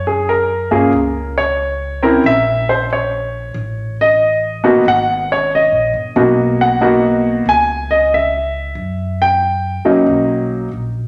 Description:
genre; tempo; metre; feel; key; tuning
jazz piano trio; 92 BPM; 4/4; swing 66% on 8ths; F# major; A4 = 440 Hz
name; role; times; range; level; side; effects
clear grand piano; melody; 0.0-10.7 s; F#3 to G#5; -16 LUFS; equal; none
upright bass; bass; 0.0-11.1 s; G1 to G2; -26 LUFS; equal; none
room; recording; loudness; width
wet large studio reverb, RT60 1.3 s; none; -15 LUFS; mono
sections
0.0-11.1 A section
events
none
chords
0.0 F#; 2.2 A#dim; 3.5 N.C.; 4.8 G#m9; 7.5 C#m; 8.8 N.C.; 10.1 Bmaj9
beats
0.28 0.93 1.58 | 2.24 2.89 3.54 4.20 | 4.85 5.50 6.16 6.81 | 7.46 8.11 8.76 9.41 | 10.06 10.72

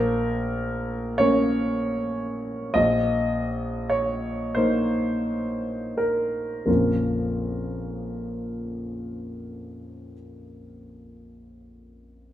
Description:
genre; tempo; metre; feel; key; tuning
classical, romantic nocturne for solo piano; 26-41 BPM (dotted quarters); 12/8; rubato; Bb minor; A4 = 440 Hz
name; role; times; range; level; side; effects
clear grand piano; solo; 0.0-12.3 s; Bb1 to Eb5; -24 LUFS; equal; none
room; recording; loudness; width
wet recital hall reverb, RT60 1.3 s; recorded in a church or concert hall; -23 LUFS; side -12 dB against mid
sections
0.0-6.7 A section; 6.7-12.3 B section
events
slowing down 0.0-6.7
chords
0.0 Bbm; 2.8 Eb5/Bb; 6.7 Bbm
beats
1.18 2.75 4.56 | 6.67 8.48 10.34 12.19

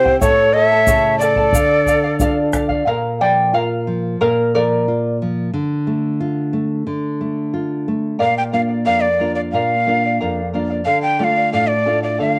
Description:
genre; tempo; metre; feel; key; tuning
andean folk, Andean ensemble; 90 BPM; 2/4; straight; unclear; A4 = 440 Hz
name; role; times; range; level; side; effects
breathy hollow quena; melody; 0.0-2.5, 8.2-12.4 s; C5 to G5; -18 LUFS; equal; cassette tape, plate reverb
breathy mellow quena; second line; 0.0-2.5 s; G4 to C#5; -26 LUFS; equal; cassette tape, plate reverb
charango; accompaniment; 0.0-5.2, 8.2-12.4 s; E4 to A5; -22 LUFS; equal; cassette tape, plate reverb
nylon-string guitar; accompaniment; 0.0-12.4 s; F2 to A4; -23 LUFS; equal; cassette tape, plate reverb
bombo; percussion; 0.1-2.8 s; none; -24 LUFS; equal; none
egg shaker; percussion; 0.2-2.7 s; none; -31 LUFS; equal; none
room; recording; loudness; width
moderate studio reverb, RT60 0.6 s; home recording on cassette; -17 LUFS; mono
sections
0.0-2.9 A section; 2.9-8.2 B section; 8.2-12.4 C section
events
charango solo 2.9-8.2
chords
0.2 A; 1.5 Dm; 2.9 Bb; 5.5 Dm; 8.2 Bb; 10.9 Dm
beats
| 0.22 0.88 | 1.54 2.20 | 2.86 3.53 | 4.19 4.86 | 5.52 6.19 | 6.86 7.53 | 8.19 8.86 | 9.53 10.20 | 10.87 11.54 | 12.21

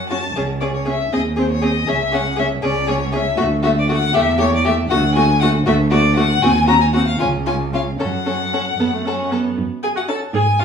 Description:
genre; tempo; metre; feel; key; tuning
quick classical-period movement for string quartet; 79 BPM (dotted quarters); 6/8; straight; F# minor; A4 = 438 Hz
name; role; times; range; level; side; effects
rich violin; melody; 0.0-10.6 s; B#4 to A#5; -20 LUFS; left 5 dB; none
rich cello; bass; 0.0-10.6 s; C#2 to G#2; -19 LUFS; right 2 dB; none
rich violin; second line; 0.1-10.3 s; C#4 to A4; -24 LUFS; left 2 dB; none
rich viola; accompaniment; 0.1-10.6 s; A3 to A4; -23 LUFS; right 1 dB; none
room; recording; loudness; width
wet stone room reverb, RT60 1.1 s; studio reverb; -15 LUFS; side -7 dB against mid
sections
0.0-9.6 A section; 9.6-10.6 A section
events
none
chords
0.4 C#5; 1.1 G#/D#; 1.9 C#5; 3.4 D; 4.2 A5/E; 4.9 D; 6.4 D#m6; 7.2 C#; 8.0 F#m; 9.6 F#5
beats
| 0.37 1.13 | 1.88 2.64 | 3.39 4.15 | 4.91 5.67 | 6.43 7.21 | 8.00 8.80 | 9.58 10.34

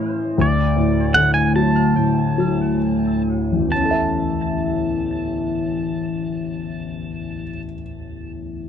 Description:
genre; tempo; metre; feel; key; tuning
acoustic folk-pop ballad; 64-80 BPM; 4/4; straight; A major; A4 = 440 Hz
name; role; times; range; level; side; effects
dark baby grand piano; accompaniment; 0.0-8.7 s; A1 to E5; -19 LUFS; left 1 dB; none
pedal steel guitar; melody; 0.4-7.6 s; D5 to A5; -22 LUFS; right 2 dB; analog delay
room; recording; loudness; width
wet small room ambience, RT60 0.5 s; dark, warm production; -17 LUFS; side -8 dB against mid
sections
0.0-3.7 A section; 3.7-7.4 B section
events
slowing down 0.0-3.7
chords
0.4 D; 3.7 A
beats
| 0.37 1.14 1.95 2.80 | 3.71 4.64 5.57 6.50

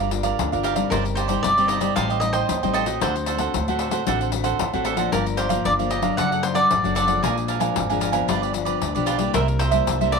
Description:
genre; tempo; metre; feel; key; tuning
samba and choro; 114 BPM; 4/4; straight; G minor; A4 = 440 Hz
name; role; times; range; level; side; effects
cavaquinho; accompaniment; 0.0-10.2 s; D4 to Ab5; -25 LUFS; right 15 dB; none
nylon-string guitar; accompaniment; 0.0-10.2 s; F2 to Bb4; -26 LUFS; left 12 dB; none
upright bass; bass; 0.0-10.2 s; F#1 to Eb2; -27 LUFS; right 1 dB; none
pandeiro; percussion; 0.0-10.2 s; none; -28 LUFS; left 13 dB; none
cavaquinho; melody; 0.9-10.2 s; Ab4 to F#5; -24 LUFS; equal; none
room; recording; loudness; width
light reverb, studio reverb; 1960s-style stereo with parts hard left and right; -19 LUFS; side -5 dB against mid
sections
0.0-10.2 A section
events
none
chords
0.0 Gm7; 0.9 Cmadd9/G; 2.0 Am7b5; 3.0 D7; 5.1 Gm7; 6.2 D/F#; 7.2 Bb7; 8.3 G7; 9.3 C7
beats
0.39 | 0.91 1.44 1.97 2.49 | 3.02 3.54 4.07 4.60 | 5.12 5.65 6.18 6.71 | 7.23 7.76 8.29 8.82 | 9.35 9.87

